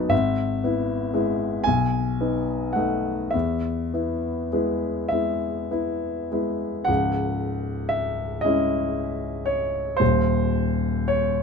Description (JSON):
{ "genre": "classical, romantic nocturne for solo piano", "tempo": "32-40 BPM (dotted quarters)", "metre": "12/8", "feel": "rubato", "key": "E major, C# minor from 6.9 s", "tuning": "A4 = 440 Hz", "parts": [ { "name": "warm grand piano", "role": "solo", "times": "0.0-11.4 s", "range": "C#1 to B5", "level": "-22 LUFS", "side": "left 1 dB", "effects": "none" } ], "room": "little or no reverb", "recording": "close, detailed microphones", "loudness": "-22 LUFS", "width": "side -5 dB against mid", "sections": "0.0-6.9 A section; 6.9-11.4 B section", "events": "none", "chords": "0.1 E/G#; 1.7 B7; 3.3 E; 6.9 C#m; 10.0 G#/D# (rootless)" }